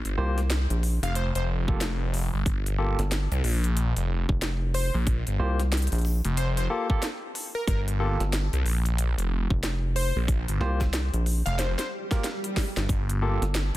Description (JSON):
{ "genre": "glitch hop", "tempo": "92 BPM", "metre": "4/4", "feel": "swing 61% on 16ths", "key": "G minor", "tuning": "A4 = 440 Hz", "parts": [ { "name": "phased detuned saw bass", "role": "bass", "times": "0.1-13.8 s", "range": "F1 to C2", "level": "-25 LUFS", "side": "equal", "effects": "phaser" }, { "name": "drum and bass drum kit", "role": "drums", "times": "0.1-13.8 s", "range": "hi-hat, snare drum", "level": "-33 LUFS", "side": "equal", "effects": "none" }, { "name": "barky tine electric piano", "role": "stabs", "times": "0.2-13.4 s", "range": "Bb3 to C5", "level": "-33 LUFS", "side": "equal", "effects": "slow stereo tremolo, sidechain pumping, ping-pong delay" }, { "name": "rubbery square bass", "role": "bass", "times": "0.2-13.7 s", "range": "F1 to C2", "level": "-25 LUFS", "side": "equal", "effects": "none" }, { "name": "plucky unison lead", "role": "melody", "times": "1.0-11.9 s", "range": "Bb4 to F5", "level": "-34 LUFS", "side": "left 1 dB", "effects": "ping-pong delay" }, { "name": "electronic kick drum", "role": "drums", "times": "1.7-13.1 s", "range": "none", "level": "-26 LUFS", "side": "equal", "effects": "none" }, { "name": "swell", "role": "sound effects", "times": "11.8-12.9 s", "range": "none", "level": "-36 LUFS", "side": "right 2 dB", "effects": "none" } ], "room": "little or no reverb", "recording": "dense, heavily limited modern master", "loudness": "-24 LUFS", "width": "side -16 dB against mid", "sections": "0.0-13.8 A section", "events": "drum fill 11.6-12.9; swell 11.8-12.9", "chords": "0.0 Gm7", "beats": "0.50 1.15 1.81 | 2.46 3.11 3.76 4.42 | 5.07 5.72 6.37 7.02 | 7.68 8.33 8.98 9.63 | 10.28 10.94 11.59 12.24 | 12.89 13.54" }